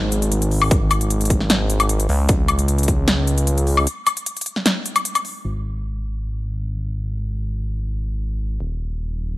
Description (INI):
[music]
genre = future bass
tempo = 152 BPM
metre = 4/4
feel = half-time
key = unclear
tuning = A4 = 440 Hz
[part]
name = fat analog bass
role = bass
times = 0.0-9.4 s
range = Eb1 to Db2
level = -20 LUFS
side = equal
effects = sidechain pumping
[part]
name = big-room dance drum kit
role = drums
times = 0.1-5.3 s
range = hi-hat, snare drum, woodblock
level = -20 LUFS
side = left 2 dB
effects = overdrive, studio reverb
[part]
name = electronic kick drum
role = drums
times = 0.7-3.0 s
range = none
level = -19 LUFS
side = equal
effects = overdrive, studio reverb
[sound]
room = little or no reverb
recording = lossy compression artefacts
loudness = -18 LUFS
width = side -18 dB against mid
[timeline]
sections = 0.0-5.4 A section; 5.4-9.4 B section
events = drop 0.0-5.4; break 3.9-5.4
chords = none